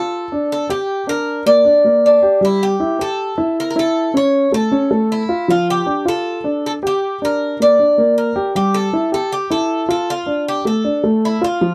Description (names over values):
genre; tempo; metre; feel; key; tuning
latin; 156 BPM; 4/4; straight; D harmonic minor; A4 = 440 Hz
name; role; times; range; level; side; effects
Cuban tres; melody; 0.0-11.7 s; D4 to D5; -19 LUFS; equal; none
dark baby grand piano; arpeggios; 0.0-11.7 s; F3 to G5; -20 LUFS; equal; none
room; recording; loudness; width
light reverb; dry, close 1970s-style studio recording; -16 LUFS; mono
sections
0.0-11.6 A section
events
none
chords
0.0 Dm; 0.9 Gm; 2.4 Gsus2; 3.9 A; 5.5 Dm; 7.0 Gm; 8.5 A5; 10.1 Dm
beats
0.11 0.49 | 0.88 1.26 1.65 2.03 | 2.41 2.80 3.18 3.56 | 3.95 4.33 4.71 5.10 | 5.48 5.86 6.25 6.63 | 7.01 7.40 7.78 8.16 | 8.55 8.93 9.31 9.70 | 10.08 10.46 10.85 11.23 | 11.62